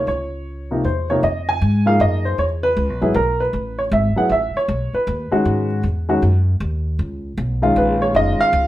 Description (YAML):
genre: jazz piano trio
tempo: 156 BPM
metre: 3/4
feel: swing 64% on 8ths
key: unclear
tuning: A4 = 439 Hz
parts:
  - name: warm baby grand piano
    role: melody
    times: 0.0-8.7 s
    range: C3 to Ab5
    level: -18 LUFS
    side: equal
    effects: none
  - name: upright bass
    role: bass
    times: 0.0-8.7 s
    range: Gb1 to Ab2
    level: -20 LUFS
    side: equal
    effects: none
room: moderate studio reverb, RT60 0.6 s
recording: heard from further back in the room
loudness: -16 LUFS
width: side -14 dB against mid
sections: 0.0-1.2 A section; 1.2-8.7 B section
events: none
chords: 0.0 N.C.; 1.2 Fm7; 2.4 E5; 3.5 Asus2; 4.7 Cb69; 5.8 Esus2; 7.0 Db13; 8.1 Gbsus2